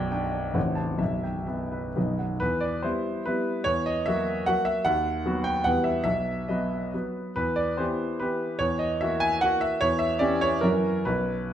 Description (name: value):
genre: classical, romantic triple-time dance for piano with dotted rhythms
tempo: 120-160 BPM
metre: 3/4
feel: rubato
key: E minor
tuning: A4 = 440 Hz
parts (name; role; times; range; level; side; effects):
- clear grand piano; solo; 0.0-11.5 s; A0 to A5; -24 LUFS; equal; none
room: wet recital hall reverb, RT60 1.5 s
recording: none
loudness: -24 LUFS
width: side -10 dB against mid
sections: 0.0-2.4 A section; 2.4-11.5 B section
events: none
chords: 0.0 G/B; 0.6 F#dim/A; 1.0 Em/B; 2.0 B; 2.4 Em; 3.7 F#7/E; 4.8 B/D#; 5.7 Em; 6.1 B; 7.4 Em; 8.6 F#7/E; 9.8 C#dim/E; 10.6 F#7